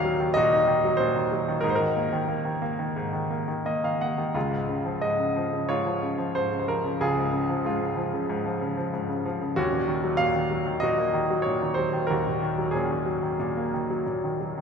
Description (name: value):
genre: classical, lyrical solo piano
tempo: 84-97 BPM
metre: 4/4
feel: rubato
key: Db major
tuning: A4 = 441 Hz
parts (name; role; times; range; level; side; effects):
- bright grand piano; solo; 0.0-14.6 s; Db2 to Gb5; -24 LUFS; equal; none
room: wet church reverb, RT60 3.6 s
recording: recorded in a church or concert hall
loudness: -24 LUFS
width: side -6 dB against mid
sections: 0.0-4.4 A section; 4.4-14.6 A section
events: grand piano fill 3.3-4.4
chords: 0.0 Ebm; 1.6 Absus2; 4.4 Db; 9.6 Ebm7